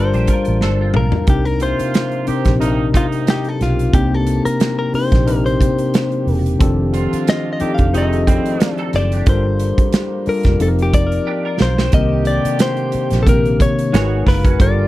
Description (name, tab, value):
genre	lush 1970s-style soul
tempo	90 BPM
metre	4/4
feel	swing 54% on 16ths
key	C dorian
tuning	A4 = 440 Hz
part	direct-recorded clean electric guitar	melody	0.0-14.9 s	F4 to F5	-22 LUFS	left 3 dB	none
part	tine electric piano	accompaniment	0.0-14.9 s	C3 to A5	-19 LUFS	left 2 dB	overdrive
part	semi-hollow electric guitar	riff	0.0-1.3, 8.8-14.8 s	C4 to D5	-29 LUFS	right 5 dB	ensemble chorus
part	vintage muted fingered electric bass	bass	0.0-14.9 s	E1 to C2	-18 LUFS	right 1 dB	none
part	modern studio drum kit	drums	0.1-14.8 s	hi-hat, kick drum, snare drum, toms	-16 LUFS	right 1 dB	none
part	warm French horn section	sustained chords	1.3-14.9 s	C3 to G4	-30 LUFS	right 5 dB	stereo widening
part	warm horn section	stabs	1.6-14.9 s	A2 to G4	-26 LUFS	right 6 dB	none
room	little or no reverb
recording	none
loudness	-14 LUFS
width	side -16 dB against mid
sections	0.0-11.9 A section; 11.9-14.9 B section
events	clean electric guitar solo 0.0-11.9; drum fill 0.6-1.3, 11.3-11.9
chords	0.0 Gm9; 1.3 Cm7; 6.6 F13; 9.3 Gm9; 10.6 F9sus4; 11.9 Cm9; 13.9 Abm9